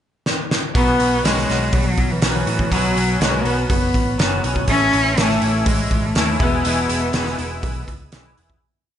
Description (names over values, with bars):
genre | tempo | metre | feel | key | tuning
quiet-loud alternative rock | 122 BPM | 4/4 | straight | unclear | A4 = 441 Hz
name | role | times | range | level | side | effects
loose indie drum kit | drums | 0.3-8.6 s | hi-hat, kick drum, snare drum | -21 LUFS | equal | none
twangy electric guitar | arpeggios | 0.7-8.6 s | E2 to F#4 | -23 LUFS | left 2 dB | analog chorus, plate reverb
rich cello | melody | 0.8-8.1 s | E3 to C#4 | -20 LUFS | equal | none
picked electric bass | bass | 0.8-8.6 s | E1 to A2 | -24 LUFS | equal | none
room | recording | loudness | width
moderate studio reverb, RT60 0.8 s | nothing above 10.7 kHz | -16 LUFS | side -10 dB against mid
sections
0.0-0.8 pickup bar; 0.8-8.6 verse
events
drum fill 0.3-0.8; fade-out 6.6-8.6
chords
0.0 N.C.; 0.8 Bsus2; 4.7 A; 6.4 E